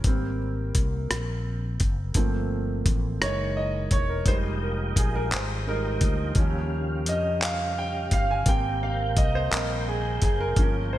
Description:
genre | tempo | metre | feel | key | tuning
slow six-eight R&B | 57 BPM (dotted quarters) | 6/8 | straight | unclear | A4 = 440 Hz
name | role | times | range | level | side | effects
warm concert grand piano | accompaniment | 0.0-11.0 s | Fb3 to Ab5 | -28 LUFS | right 2 dB | lush chorus
mellow fretless electric bass | bass | 0.0-11.0 s | Fb1 to F2 | -29 LUFS | equal | ensemble chorus
dusty soul sampler-style drum kit | drums | 0.0-10.7 s | handclaps, hi-hat, kick drum, rim click | -25 LUFS | equal | none
tonewheel organ | sustained chords | 4.3-11.0 s | C3 to G5 | -36 LUFS | left 1 dB | chorus vibrato, slow rotary speaker
room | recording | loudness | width
light reverb, digital ambience | bright 1980s-style digital production | -23 LUFS | side -14 dB against mid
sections
0.0-11.0 A section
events
grand piano solo 0.0-11.0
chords
0.0 Abmaj9; 2.1 Gm11; 3.2 Gb13; 4.3 Fm11; 6.4 Eb9; 8.5 Abmaj9

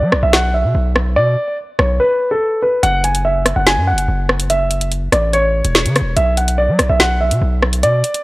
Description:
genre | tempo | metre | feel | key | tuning
hip hop, drill | 144 BPM | 4/4 | half-time | unclear | A4 = 440 Hz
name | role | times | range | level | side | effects
warm concert grand piano | melody | 0.0-8.2 s | A4 to G#5 | -16 LUFS | equal | low-pass filter
distorted 808-style bass | bass | 0.0-8.0 s | E1 to F#3 | -16 LUFS | equal | distortion
drill drum kit | drums | 0.1-8.2 s | hi-hat, rim click, snare drum | -16 LUFS | equal | none
room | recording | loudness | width
digital ambience | dry, gritty hardware recording, cassette tape | -13 LUFS | side -20 dB against mid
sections
0.0-8.2 A section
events
break 0.0-2.8; drums muted 2.0-2.8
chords
0.0 Bm; 2.8 F#5; 6.2 Bm

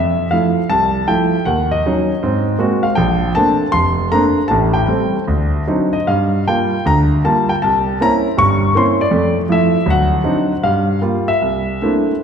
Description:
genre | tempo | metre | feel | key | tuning
solo jazz | 157 BPM | 4/4 | swing 64% on 8ths, rubato | F major | A4 = 440 Hz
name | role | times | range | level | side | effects
warm concert grand piano | solo | 0.0-12.1 s | F1 to Db6 | -13 LUFS | equal | none
room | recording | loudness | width
wet scoring stage reverb, RT60 1.9 s | heard from further back in the room | -13 LUFS | side -7 dB against mid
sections
0.0-12.2 A section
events
none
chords
0.0 Fmaj7; 1.5 Ebm7; 2.2 Ab9; 3.0 Bbmaj9; 4.5 Am7; 5.3 D7b9; 6.1 Gm7; 7.6 C7b9; 9.1 Fmaj7; 9.9 D7b9; 10.7 Gm7; 11.4 C13

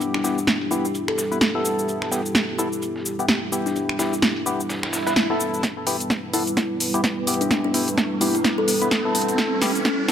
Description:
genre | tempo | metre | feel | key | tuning
bass house | 128 BPM | 4/4 | swing 59% on 16ths | E minor | A4 = 441 Hz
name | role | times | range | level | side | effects
kalimba | melody | 0.0-10.1 s | D4 to A4 | -26 LUFS | left 2 dB | none
dark analog pad | sustained chords | 0.0-10.1 s | G3 to B4 | -29 LUFS | right 2 dB | chorus, sidechain pumping
percussive organ stab | stabs | 0.0-10.1 s | B3 to B4 | -27 LUFS | left 2 dB | chorus, sidechain pumping, digital delay
dusty soul sampler-style drum kit | drums | 0.0-5.5 s | hi-hat, shaker, snare drum | -34 LUFS | right 1 dB | sidechain pumping on perc, high-pass filter on perc, low-pass filter on perc, sidechain pumping on hats, high-pass filter on hats, low-pass filter on hats, high-pass filter on snare, low-pass filter on snare
house drum kit | drums | 0.0-10.1 s | finger snaps, hi-hat, shaker, snare drum | -22 LUFS | right 1 dB | none
swell and riser | sound effects | 4.8-10.1 s | none | -29 LUFS | right 1 dB | none
electronic kick drum | drums | 5.6-10.0 s | none | -33 LUFS | right 1 dB | high-pass filter on kick
room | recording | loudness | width
light reverb | high-pass filter | -20 LUFS | side -9 dB against mid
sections
0.0-5.6 A section; 5.6-10.1 B section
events
swell 4.8-5.6; build-up 5.6-10.1; drum fill 5.6-10.1; riser 5.6-10.1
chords
0.0 Em

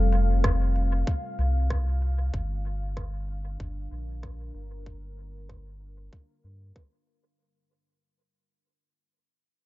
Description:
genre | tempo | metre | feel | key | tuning
ambient dub | 95 BPM | 4/4 | straight | G minor | A4 = 441 Hz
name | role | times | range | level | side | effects
deep dark ambient pad | sustained chords | 0.0-7.4 s | G3 to F5 | -35 LUFS | left 2 dB | chorus, built-in reverb
warm sub bass | bass | 0.0-6.7 s | F1 to G2 | -27 LUFS | equal | none
organic electronic drum kit | drums | 0.1-7.2 s | hi-hat, rim click | -35 LUFS | right 1 dB | low-pass filter on hats, low-pass filter on perc, low-pass filter on snare, low-pass filter on room, dub echo
electronic kick drum | drums | 0.4-6.9 s | none | -30 LUFS | equal | none
room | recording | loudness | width
little or no reverb | nothing above 7.8 kHz | -25 LUFS | side -17 dB against mid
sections
0.0-7.4 A section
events
fade-out 0.0-7.4; filter sweep on drum 0.0-7.4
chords
0.0 Fadd9; 2.3 Gm7

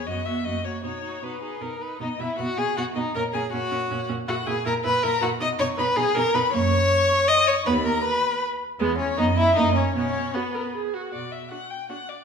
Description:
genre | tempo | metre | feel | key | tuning
quick classical-period movement for string quartet | 158 BPM | 3/4 | straight | B major | A4 = 440 Hz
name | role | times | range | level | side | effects
rich violin | melody | 0.0-12.2 s | B4 to D#6 | -30 LUFS | left 6 dB | none
warm violin | second line | 0.0-12.0 s | B3 to D#5 | -23 LUFS | left 1 dB | none
rich viola | accompaniment | 0.0-12.0 s | G#3 to A#4 | -30 LUFS | right 4 dB | none
rich cello | bass | 0.1-11.4 s | D#2 to B2 | -29 LUFS | right 3 dB | none
room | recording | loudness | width
wet recital hall reverb, RT60 1.3 s | minimal, uncompressed stereo recording | -21 LUFS | side -6 dB against mid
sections
0.0-2.0 A section; 2.0-11.1 B section; 11.1-12.2 B section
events
none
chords
0.1 B/F#; 0.5 F#; 0.8 B; 2.0 Badd11; 3.1 F#/A#; 4.3 F#9/A#; 5.4 B; 6.5 F#; 7.7 B/D#; 8.8 E; 9.2 B/F#; 9.6 F#; 10.0 B5; 11.1 Bm

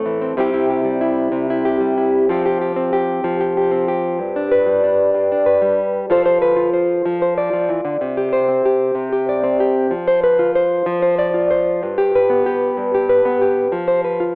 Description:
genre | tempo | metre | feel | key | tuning
highlife | 126 BPM (dotted quarters) | 12/8 | straight | C major | A4 = 440 Hz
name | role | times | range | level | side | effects
nylon-string guitar | solo | 0.0-14.3 s | G2 to D5 | -14 LUFS | equal | none
room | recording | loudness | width
moderate spring reverb, RT60 2.2 s | home recording on cassette, telephone sound | -14 LUFS | side -32 dB against mid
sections
0.4-14.3 A section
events
none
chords
0.4 C; 2.3 Fsus2; 4.2 G; 6.1 F; 8.0 C5; 9.9 F5; 11.8 G; 13.7 F5

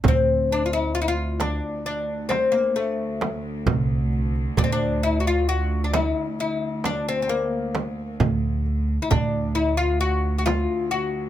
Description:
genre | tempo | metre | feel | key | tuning
Arabic maqam ensemble | 133 BPM (eighths) | 10/8 | straight | D maqam saba | A4 = 441 Hz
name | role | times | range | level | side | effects
upright bass | bass | 0.0-10.7 s | C2 to D2 | -24 LUFS | right 1 dB | none
darbuka | percussion | 0.0-11.0 s | none | -27 LUFS | right 5 dB | none
frame drum | percussion | 0.0-10.7 s | none | -26 LUFS | right 2 dB | none
oud | melody | 0.1-11.3 s | A3 to F#4 | -24 LUFS | left 4 dB | none
warm symphonic cello section | drone | 0.1-11.3 s | D2 | -32 LUFS | right 1 dB | none
room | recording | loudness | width
little or no reverb | close, detailed microphones | -21 LUFS | side -12 dB against mid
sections
0.0-11.3 A section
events
none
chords
none

